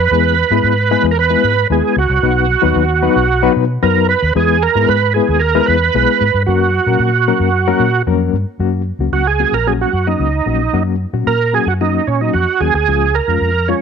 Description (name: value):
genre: uptempo 1960s-style soul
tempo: 113 BPM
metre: 4/4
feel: straight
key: F# major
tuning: A4 = 441 Hz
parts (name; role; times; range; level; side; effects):
- overdriven tonewheel organ; melody; 0.0-13.8 s; C#4 to B4; -14 LUFS; right 9 dB; chorus vibrato, slow rotary speaker
- vintage muted fingered electric bass; bass; 0.0-13.7 s; A#1 to B2; -17 LUFS; equal; none
- reed electric piano; accompaniment; 0.1-13.8 s; E#3 to B4; -18 LUFS; left 14 dB; fast tremolo
room: light reverb, digital ambience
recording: 1960s-style stereo with parts hard left and right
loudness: -12 LUFS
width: side -6 dB against mid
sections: 0.0-8.6 A section; 8.6-13.8 B section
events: tonewheel organ solo 8.6-13.8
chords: 0.1 E; 2.2 B; 4.4 E; 6.5 F#; 12.9 C#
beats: | 0.12 0.65 1.17 1.70 | 2.23 2.76 3.29 3.82 | 4.35 4.88 5.41 5.94 | 6.47 7.00 7.54 8.07 | 8.60 9.13 9.67 10.20 | 10.74 11.27 11.80 12.34 | 12.88 13.41